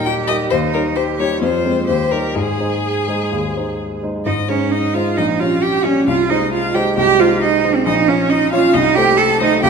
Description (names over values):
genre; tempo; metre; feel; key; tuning
quick classical-period movement for piano trio; 124-136 BPM; 4/4; rubato; Ab major; A4 = 436 Hz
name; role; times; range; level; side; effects
rich violin; melody; 0.0-9.7 s; Ab4 to A5; -22 LUFS; left 7 dB; none
clear cello; second line; 0.0-9.7 s; C4 to A4; -16 LUFS; right 7 dB; none
warm baby grand piano; accompaniment; 0.0-9.7 s; Bb1 to Db5; -19 LUFS; left 2 dB; none
room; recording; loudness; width
wet recital hall reverb, RT60 1.7 s; none; -14 LUFS; side -6 dB against mid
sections
0.0-4.3 A section; 4.3-9.7 A section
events
none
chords
0.0 Eb; 0.5 Eb7; 1.4 Fm; 1.9 Eb7; 2.4 Ab; 5.2 Gdim/Bb; 6.1 Ab/C; 7.9 Bbm; 8.7 Cm6